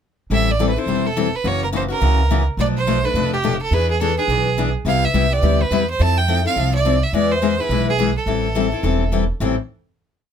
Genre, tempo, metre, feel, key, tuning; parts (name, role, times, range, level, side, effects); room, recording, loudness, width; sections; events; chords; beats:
acoustic string swing (jazz manouche); 211 BPM; 4/4; swing 59% on 8ths; A minor; A4 = 441 Hz
clear violin; melody; 0.3-9.1 s; G4 to A5; -21 LUFS; right 4 dB
picked steel-string acoustic guitar; accompaniment; 0.3-9.5 s; A2 to A4; -20 LUFS; left 7 dB
upright bass; bass; 0.3-9.6 s; E1 to F2; -20 LUFS; right 2 dB
little or no reverb; close, detailed microphones; -16 LUFS; side -8 dB against mid
0.3-9.4 A section; 9.4-10.3 final chord
0.3 Am7; 1.4 F#7; 2.6 Bm7b5; 3.7 E7; 4.9 Cmaj7; 6.0 Fmaj7; 7.1 E; 8.3 Am7
| 0.31 0.59 0.88 1.16 | 1.44 1.73 2.01 2.29 | 2.58 2.86 3.15 3.43 | 3.72 4.00 4.29 4.57 | 4.85 5.14 5.42 5.71 | 5.99 6.28 6.56 6.85 | 7.13 7.42 7.70 7.99 | 8.27 8.56 8.84 9.13 | 9.41